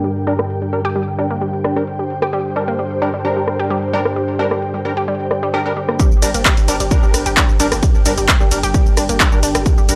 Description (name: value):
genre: driving peak-time techno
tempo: 131 BPM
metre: 4/4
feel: straight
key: G minor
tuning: A4 = 440 Hz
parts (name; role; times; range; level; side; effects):
- analog pluck; riff; 0.0-9.8 s; G3 to G4; -25 LUFS; equal; chorus, sidechain pumping, tape echo
- rave stab; stabs; 0.0-10.0 s; G3 to Bb4; -26 LUFS; equal; chorus, built-in reverb, sidechain pumping, tape echo
- analog drone; drone; 0.0-10.0 s; G2 to D3; -28 LUFS; equal; chorus, sidechain pumping
- punchy analog drum machine; drums; 0.0-10.0 s; handclaps, hi-hat, ride cymbal, rim click, shaker; -20 LUFS; equal; overdrive, low-pass filter on hats, studio ambience, low-pass filter on snare, low-pass filter on perc, low-pass filter on cymbals
- ethereal airy pad; texture; 0.0-10.0 s; D4 to G5; -26 LUFS; equal; ensemble chorus, built-in reverb, sidechain pumping
- electronic kick drum; drums; 6.0-9.8 s; none; -16 LUFS; equal; studio ambience
- growling 808-style bass; bass; 6.1-10.0 s; G1; -26 LUFS; equal; none
room: light reverb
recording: dry, gritty hardware recording, transformer saturation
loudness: -17 LUFS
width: mono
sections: 0.0-6.0 A section; 6.0-10.0 B section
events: filter sweep on synth stab 0.0-6.0; drop 6.0-10.0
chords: 0.0 Gm